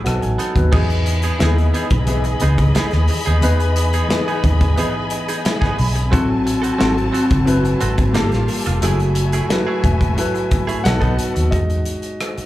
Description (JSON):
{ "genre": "lush 1970s-style soul", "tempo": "89 BPM", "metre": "4/4", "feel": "straight", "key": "E major", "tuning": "A4 = 442 Hz", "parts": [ { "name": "warm concert grand piano", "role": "accompaniment", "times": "0.0-12.5 s", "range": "E3 to B5", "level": "-21 LUFS", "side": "left 1 dB", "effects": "slapback echo" }, { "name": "direct-recorded clean electric guitar", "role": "riff", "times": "0.1-11.4 s", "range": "A3 to A4", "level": "-27 LUFS", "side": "right 6 dB", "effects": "slapback echo" }, { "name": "vintage muted fingered electric bass", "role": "bass", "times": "0.1-12.4 s", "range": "E1 to E2", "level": "-18 LUFS", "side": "equal", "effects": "none" }, { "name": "modern studio drum kit", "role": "drums", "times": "0.1-12.5 s", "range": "crash cymbal, hi-hat, kick drum, rim click, snare drum", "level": "-21 LUFS", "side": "equal", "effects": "none" }, { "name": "warm studio string section", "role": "sustained chords", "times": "0.7-11.5 s", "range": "A3 to B5", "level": "-26 LUFS", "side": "left 1 dB", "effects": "none" } ], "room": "small room ambience", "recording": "live gig heard through the venue's PA, club reverb", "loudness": "-15 LUFS", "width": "side -15 dB against mid", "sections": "0.7-11.5 A section", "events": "grand piano fill 0.0-0.7, 5.1-6.1", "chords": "0.1 B7; 0.7 Emaj7; 6.1 Am6; 8.2 Gm9; 8.8 F#m9; 10.9 B7; 11.5 Emaj7" }